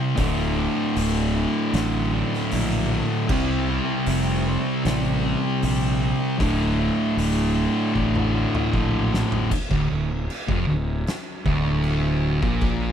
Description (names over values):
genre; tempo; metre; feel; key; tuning
stoner and doom metal; 77 BPM; 4/4; straight; unclear; A4 = 442 Hz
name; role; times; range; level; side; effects
thick fuzz guitar; riff; 0.0-12.9 s; D2 to C4; -26 LUFS; left 8 dB; distortion
thick fuzz guitar; riff; 0.0-12.9 s; D2 to C4; -25 LUFS; right 8 dB; distortion
tight distorted guitar; riff; 0.0-9.5 s; D2 to C4; -29 LUFS; left 1 dB; distortion
fuzz fingered electric bass; bass; 0.2-12.9 s; D1 to C2; -26 LUFS; equal; overdrive
oversized low-tuned drum kit; drums; 0.2-12.8 s; crash cymbal, hi-hat, kick drum, snare drum, toms; -29 LUFS; equal; none
room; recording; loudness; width
little or no reverb; none; -20 LUFS; side -9 dB against mid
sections
0.0-9.5 A section; 9.5-12.9 B section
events
drum fill 8.0-9.5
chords
0.2 D5; 3.3 C5; 6.4 D5; 9.5 Dm